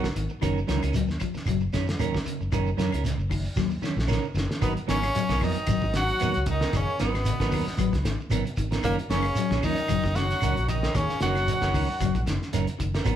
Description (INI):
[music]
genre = afrobeat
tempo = 114 BPM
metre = 4/4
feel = swing 54% on 16ths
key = unclear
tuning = A4 = 443 Hz
[part]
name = bright tenor saxophone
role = melody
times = 0.0-0.1, 4.6-12.2 s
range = A#3 to F#4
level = -29 LUFS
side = equal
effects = none
[part]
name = breathy trumpet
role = second line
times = 0.0-0.1, 4.6-12.2 s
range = A#4 to F#5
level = -36 LUFS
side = right 2 dB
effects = none
[part]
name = muted trombone section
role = second line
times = 0.0-0.1, 4.6-12.2 s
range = A#2 to F#3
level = -36 LUFS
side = left 4 dB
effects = none
[part]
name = electric guitar at the edge of break-up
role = arpeggios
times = 0.0-13.2 s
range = C#3 to F#3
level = -32 LUFS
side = left 6 dB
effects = none
[part]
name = clean electric guitar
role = stabs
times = 0.0-13.2 s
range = F#3 to A#4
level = -32 LUFS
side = right 6 dB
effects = none
[part]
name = cloth-damped thuddy drum kit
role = drums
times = 0.0-13.2 s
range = hi-hat, kick drum, snare drum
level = -31 LUFS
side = equal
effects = none
[part]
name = shekere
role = percussion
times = 0.0-13.2 s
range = none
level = -33 LUFS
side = right 1 dB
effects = none
[part]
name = fingered electric bass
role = bass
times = 0.2-13.2 s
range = F#1 to F#2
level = -28 LUFS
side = equal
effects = none
[part]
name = claves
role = percussion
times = 0.4-13.2 s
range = none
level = -44 LUFS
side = left 6 dB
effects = none
[sound]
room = moderate large studio reverb, RT60 1.2 s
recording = band playing live in one room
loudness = -23 LUFS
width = side -10 dB against mid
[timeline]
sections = 0.0-4.6 A section; 4.6-13.2 B section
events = drum fill 3.6-4.6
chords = 0.4 F#6; 4.6 G#m9; 8.8 F#6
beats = | 0.42 0.94 1.47 2.00 | 2.52 3.05 3.57 4.10 | 4.62 5.15 5.67 6.20 | 6.73 7.25 7.78 8.31 | 8.83 9.36 9.89 10.41 | 10.94 11.47 12.00 12.53 | 13.05